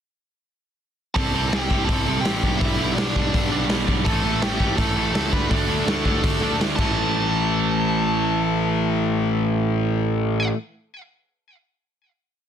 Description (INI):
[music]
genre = punk rock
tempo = 166 BPM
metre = 4/4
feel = straight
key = unclear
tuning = A4 = 440 Hz
[part]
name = bluesy overdriven lead guitar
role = melody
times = 1.1-10.5 s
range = D4 to B5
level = -27 LUFS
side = left 1 dB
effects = distortion, digital delay
[part]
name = crunchy overdriven guitar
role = riff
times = 1.2-10.6 s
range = G2 to D4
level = -25 LUFS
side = right 14 dB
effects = none
[part]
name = distorted electric guitar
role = riff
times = 1.2-10.6 s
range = G2 to D4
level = -26 LUFS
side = left 16 dB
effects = overdrive
[part]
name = fuzz picked electric bass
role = bass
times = 1.2-10.5 s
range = A1 to D2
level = -25 LUFS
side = left 1 dB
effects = overdrive
[part]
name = raw garage drum kit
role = drums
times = 1.2-6.9 s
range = crash cymbal, hi-hat, kick drum, snare drum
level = -24 LUFS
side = equal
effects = none
[sound]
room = light reverb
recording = dense, heavily limited modern master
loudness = -19 LUFS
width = side -8 dB against mid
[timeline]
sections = 1.2-7.0 chorus; 7.0-9.8 final hit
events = none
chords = 1.2 C5; 2.4 G/B; 4.1 A; 5.3 D5; 6.8 A5